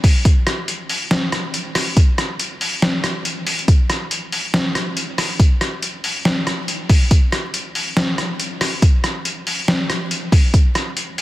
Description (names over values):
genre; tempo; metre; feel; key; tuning
dubstep; 140 BPM; 4/4; swing 58% on 16ths, half-time; none; none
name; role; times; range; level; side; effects
electronic kick drum; drums; 0.0-10.6 s; none; -12 LUFS; equal; none
trip hop sampler-style drum kit; drums; 0.0-11.2 s; hi-hat, rim click, snare drum; -19 LUFS; equal; none
room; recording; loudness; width
light reverb; dense, heavily limited modern master, vinyl crackle; -16 LUFS; side -16 dB against mid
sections
0.0-11.2 A section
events
break 2.8-3.7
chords
none